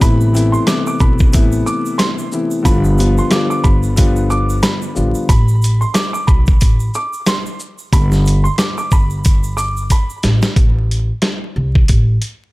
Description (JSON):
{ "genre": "hip hop, boom-bap hip-hop", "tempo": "91 BPM", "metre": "4/4", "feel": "swing 58% on 16ths", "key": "A minor", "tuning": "A4 = 440 Hz", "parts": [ { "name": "dark upright piano", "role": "melody", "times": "0.0-10.2 s", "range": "B5 to D6", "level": "-23 LUFS", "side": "right 2 dB", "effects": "high-pass filter, low-pass filter, digital delay" }, { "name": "dark concert grand piano", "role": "accompaniment", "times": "0.0-5.3 s", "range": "C3 to F4", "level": "-17 LUFS", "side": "left 2 dB", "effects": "cassette tape, high-pass filter, low-pass filter" }, { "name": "upright bass", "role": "bass", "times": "0.0-12.2 s", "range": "G1 to C2", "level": "-16 LUFS", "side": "equal", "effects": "none" }, { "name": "dusty soul sampler-style drum kit", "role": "drums", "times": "0.0-12.4 s", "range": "hi-hat, kick drum, rim click, shaker, snare drum", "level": "-14 LUFS", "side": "equal", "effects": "none" }, { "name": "egg shaker", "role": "percussion", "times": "0.0-10.6 s", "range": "none", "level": "-34 LUFS", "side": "right 5 dB", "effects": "none" } ], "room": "small room reverb", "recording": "vinyl crackle", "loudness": "-12 LUFS", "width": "side -20 dB against mid", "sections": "0.0-10.6 A section; 10.6-12.5 B section", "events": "drum fill 9.9-10.6", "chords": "0.0 Amadd9; 2.7 G7; 5.3 Asus2; 7.9 G; 10.6 Am", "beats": "| 0.01 0.67 1.33 1.99 | 2.65 3.31 3.97 4.63 | 5.29 5.95 6.61 7.27 | 7.93 8.59 9.24 9.90 | 10.56 11.22 11.88" }